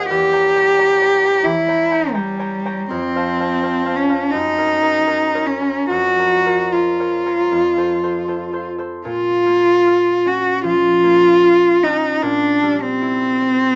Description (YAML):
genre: classical, romantic duo for cello and harp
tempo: 70-90 BPM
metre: 4/4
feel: rubato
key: Bb minor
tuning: A4 = 440 Hz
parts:
  - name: rich cello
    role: melody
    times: 0.0-13.8 s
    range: G3 to G4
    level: -17 LUFS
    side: equal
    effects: none
  - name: concert harp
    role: accompaniment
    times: 0.0-13.8 s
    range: Eb2 to C6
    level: -27 LUFS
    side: equal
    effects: none
room: moderate studio reverb, RT60 0.6 s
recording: small speaker sound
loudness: -16 LUFS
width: mono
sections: 0.0-9.1 A section; 9.1-13.8 B section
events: none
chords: 0.1 Edim7; 2.9 F; 4.3 Gb; 5.9 Bbm/F; 7.5 F; 9.1 Bbm; 12.2 C7/Bb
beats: | 0.10 0.78 1.45 2.13 | 2.90 3.61 4.32 5.06 | 5.90 6.72 7.52 8.29 | 9.06 9.87 10.65 11.45 | 12.24 13.02